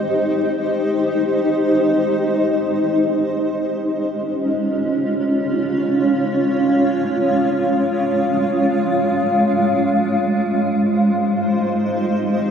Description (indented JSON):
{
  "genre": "ambient",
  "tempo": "free time",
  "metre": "none",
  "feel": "none",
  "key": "Ab major",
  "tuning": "A4 = 439 Hz",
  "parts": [
    { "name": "granular cloud pad", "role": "solo", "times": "0.0-12.5 s", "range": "Ab3 to F5", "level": "-16 LUFS", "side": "equal", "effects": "built-in reverb, tape echo" }
  ],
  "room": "wet cathedral reverb, RT60 5.4 s",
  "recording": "none",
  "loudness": "-16 LUFS",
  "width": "side -7 dB against mid",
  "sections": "0.0-12.5 A section",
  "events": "none",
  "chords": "0.0 Abmaj7; 3.5 Db/Ab; 10.2 Abmaj7"
}